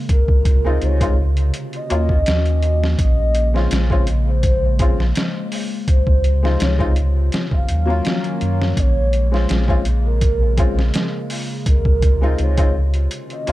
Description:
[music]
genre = trip hop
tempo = 83 BPM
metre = 4/4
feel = straight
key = Bb minor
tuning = A4 = 439 Hz
[part]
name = warbly tape-like pad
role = sustained chords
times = 0.0-13.5 s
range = C3 to Gb4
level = -28 LUFS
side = left 1 dB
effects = chorus, built-in reverb
[part]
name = pure breathy sine lead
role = melody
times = 0.1-13.5 s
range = Bb4 to F5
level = -26 LUFS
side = equal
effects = analog chorus, tape echo
[part]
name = warm sub bass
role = bass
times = 0.1-13.5 s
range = Bb1 to Gb2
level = -17 LUFS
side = equal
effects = none
[part]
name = trip hop sampler-style drum kit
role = drums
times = 0.1-13.5 s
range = hi-hat, kick drum, snare drum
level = -19 LUFS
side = equal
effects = overdrive
[part]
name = felt-muted upright piano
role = accompaniment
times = 0.6-13.5 s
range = Gb3 to F4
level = -26 LUFS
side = left 2 dB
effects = harmonic tremolo, tape echo
[sound]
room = little or no reverb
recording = dark, warm production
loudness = -15 LUFS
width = side -16 dB against mid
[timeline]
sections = 0.0-13.5 A section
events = none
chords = 0.1 Dbmaj7; 1.5 Ebm7; 3.0 Bbm7; 5.9 Dbmaj7; 7.3 Ebm7; 8.8 Bbm7; 11.7 Dbmaj7

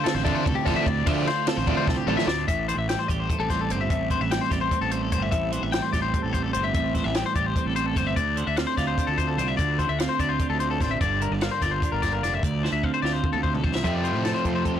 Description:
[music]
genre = math rock and midwest emo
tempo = 296 BPM (eighths)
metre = 7/8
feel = straight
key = unclear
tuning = A4 = 440 Hz
[part]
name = twelve-string electric guitar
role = accompaniment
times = 0.0-14.8 s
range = D2 to G4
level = -29 LUFS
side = right 8 dB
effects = none
[part]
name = twangy electric guitar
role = arpeggios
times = 0.0-14.8 s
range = G4 to G5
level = -27 LUFS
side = left 8 dB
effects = analog delay
[part]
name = biting overdriven guitar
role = riff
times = 0.1-2.3, 13.8-14.8 s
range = F2 to D4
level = -26 LUFS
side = right 1 dB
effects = none
[part]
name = fuzz fingered electric bass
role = bass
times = 0.1-14.8 s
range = F1 to A2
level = -29 LUFS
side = equal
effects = overdrive
[part]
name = compact cocktail drum kit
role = drums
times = 0.1-14.7 s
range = hi-hat, kick drum, ride cymbal, snare drum, toms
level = -28 LUFS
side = equal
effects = none
[sound]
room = light reverb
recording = blown-out, overdriven recording, overdrive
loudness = -22 LUFS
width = side -9 dB against mid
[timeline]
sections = 0.0-2.5 A section; 2.5-13.8 B section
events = drum fill 1.9-2.5, 12.6-13.8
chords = 0.0 Dm9; 2.5 Am7; 8.2 Dm7; 11.0 Gm7; 12.4 Dm7; 13.8 Fmaj7

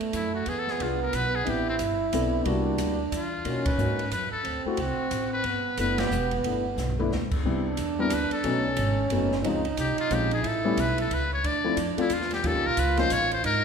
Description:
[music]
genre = jazz, small-group swing and bop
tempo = 180 BPM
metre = 3/4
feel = swing 62% on 8ths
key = G major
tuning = A4 = 440 Hz
[part]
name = warm trombone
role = second line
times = 0.0-13.6 s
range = A3 to F4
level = -29 LUFS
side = right 4 dB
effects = none
[part]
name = upright bass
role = bass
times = 0.0-13.6 s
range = E1 to B2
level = -31 LUFS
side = equal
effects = none
[part]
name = open jazz drum kit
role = drums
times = 0.0-13.5 s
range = crash cymbal, hi-hat, kick drum, ride cymbal, snare drum, toms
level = -34 LUFS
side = equal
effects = none
[part]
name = trumpet with metal mute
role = melody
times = 0.2-13.6 s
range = C4 to D5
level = -29 LUFS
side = left 3 dB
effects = none
[part]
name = dark grand piano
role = accompaniment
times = 0.8-13.1 s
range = F3 to Bb4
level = -30 LUFS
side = left 4 dB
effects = none
[sound]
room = moderate scoring stage reverb, RT60 1.8 s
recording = recorded in a church or concert hall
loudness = -24 LUFS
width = side -6 dB against mid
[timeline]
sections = 0.0-7.4 A section; 7.4-13.6 B section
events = band accent 3.6, 5.9; drum fill 6.8-7.1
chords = 0.5 E7b9; 1.5 Am11; 2.5 C7#11; 3.5 Bmaj9; 4.5 D7; 5.4 G69; 7.4 Cmaj9; 8.4 B9; 9.4 Dbmaj9; 10.4 A; 11.4 Dm7; 12.4 Eb7

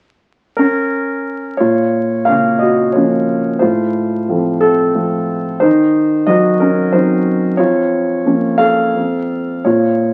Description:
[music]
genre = classical, lyrical solo piano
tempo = 90 BPM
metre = 3/4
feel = rubato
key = Bb harmonic minor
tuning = A4 = 435 Hz
[part]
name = warm concert grand piano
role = solo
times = 0.6-10.1 s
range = F2 to F5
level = -14 LUFS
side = equal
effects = none
[sound]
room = wet studio reverb, RT60 0.5 s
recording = very old 78 rpm record, vinyl crackle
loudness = -15 LUFS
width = mono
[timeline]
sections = 0.0-1.6 A section; 1.6-10.1 B section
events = none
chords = 0.0 N.C.; 1.6 Bbm; 3.6 F/A; 5.6 Cdim; 7.6 Bbm/F; 9.0 F

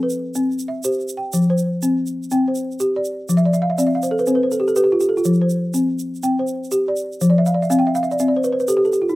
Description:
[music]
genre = west african traditional, West African string and xylophone music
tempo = 122 BPM (dotted quarters)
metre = 12/8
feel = straight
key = F lydian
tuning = A4 = 440 Hz
[part]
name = balafon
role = arpeggios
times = 0.0-9.2 s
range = F3 to G5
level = -16 LUFS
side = equal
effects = slapback echo
[part]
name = egg shaker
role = percussion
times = 0.1-9.1 s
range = none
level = -32 LUFS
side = right 5 dB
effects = none
[sound]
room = light reverb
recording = recorded outdoors, with no room sound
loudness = -16 LUFS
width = side -18 dB against mid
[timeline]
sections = 0.0-1.3 A section; 1.3-9.2 B section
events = balafon fill 3.4-5.3, 7.3-9.2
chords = 0.4 C; 1.3 F5; 2.3 C5; 3.3 F5; 4.3 C5; 5.3 F5; 6.2 C5; 7.2 F5; 8.2 C5

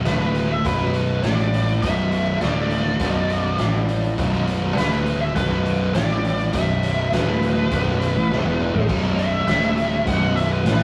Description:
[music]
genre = stoner and doom metal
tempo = 102 BPM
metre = 4/4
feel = straight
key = B minor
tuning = A4 = 443 Hz
[part]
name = thick fuzz guitar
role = riff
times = 0.0-10.8 s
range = B1 to A2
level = -27 LUFS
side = equal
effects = distortion
[part]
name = thick fuzz guitar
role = riff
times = 0.0-10.8 s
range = B1 to A2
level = -30 LUFS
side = equal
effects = none
[part]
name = fuzz lead guitar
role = melody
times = 0.1-10.8 s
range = B4 to F#5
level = -27 LUFS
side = equal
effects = wah, distortion
[part]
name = fuzz fingered electric bass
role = bass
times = 0.1-10.8 s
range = B0 to A1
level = -26 LUFS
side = equal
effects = overdrive
[part]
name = raw garage drum kit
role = drums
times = 0.1-10.8 s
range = crash cymbal, hi-hat, kick drum, snare drum, splash cymbal, toms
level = -28 LUFS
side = equal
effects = none
[sound]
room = light reverb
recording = rough rehearsal-room recording, small room ambience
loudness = -21 LUFS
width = mono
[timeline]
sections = 0.0-10.8 A section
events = lead electric guitar solo 0.0-10.8; drum fill 8.3-8.9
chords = 0.0 Bm

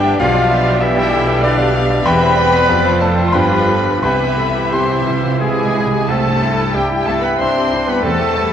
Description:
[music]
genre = classical, romantic movement for piano and orchestra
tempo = 86-98 BPM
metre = 3/4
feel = rubato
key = C major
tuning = A4 = 443 Hz
[part]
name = clear grand piano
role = melody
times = 0.0-8.5 s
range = B1 to C6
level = -17 LUFS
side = left 1 dB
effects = none
[part]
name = rich chamber violin section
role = melody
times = 0.0-8.5 s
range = D5 to C6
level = -25 LUFS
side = left 4 dB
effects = none
[part]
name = clear clarinet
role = second line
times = 0.0-8.5 s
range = C4 to C5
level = -25 LUFS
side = left 1 dB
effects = none
[part]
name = clear oboe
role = second line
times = 0.0-8.5 s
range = D4 to C5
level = -24 LUFS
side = right 3 dB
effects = none
[part]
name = rich chamber violin section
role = second line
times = 0.0-8.5 s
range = G4 to G5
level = -26 LUFS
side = left 2 dB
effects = none
[part]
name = silver concert flute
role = second line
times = 0.0-8.5 s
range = D5 to C6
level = -25 LUFS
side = left 2 dB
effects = none
[part]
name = rich chamber viola section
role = accompaniment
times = 0.0-8.4 s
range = C3 to G4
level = -24 LUFS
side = right 2 dB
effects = none
[part]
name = warm bassoon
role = accompaniment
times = 0.0-8.5 s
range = E3 to E4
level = -24 LUFS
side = right 2 dB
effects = none
[part]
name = mellow French horn section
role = sustained chords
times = 0.0-8.5 s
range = D3 to C4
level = -24 LUFS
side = left 3 dB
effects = none
[part]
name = rich chamber double bass section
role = bass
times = 0.0-8.4 s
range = E1 to E2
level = -24 LUFS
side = right 2 dB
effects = none
[part]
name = rich studio cello section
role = bass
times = 0.0-8.5 s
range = E2 to C4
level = -24 LUFS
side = right 3 dB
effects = none
[part]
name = timpani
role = percussion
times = 4.0-8.5 s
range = E2 to C3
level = -24 LUFS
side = right 4 dB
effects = none
[sound]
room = wet concert hall reverb, RT60 1.9 s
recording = worn, warbling old tape, cassette tape, warbly pitch drift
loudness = -12 LUFS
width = side -9 dB against mid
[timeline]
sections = 0.0-6.1 A section; 6.1-8.5 A section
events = timpani fill 4.0-6.1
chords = 0.2 G/B; 2.1 C/E; 2.7 F; 3.3 G7; 4.0 C

